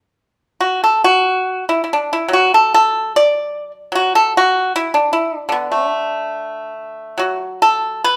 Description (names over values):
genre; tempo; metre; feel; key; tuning
chinese traditional, Chinese solo plucked strings; 70-76 BPM; 2/4; rubato; unclear; A4 = 440 Hz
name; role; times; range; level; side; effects
pipa; solo; 0.6-8.2 s; D3 to D5; -16 LUFS; equal; none
room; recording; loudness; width
light reverb; band playing live in one room; -16 LUFS; mono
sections
0.0-7.2 A section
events
none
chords
none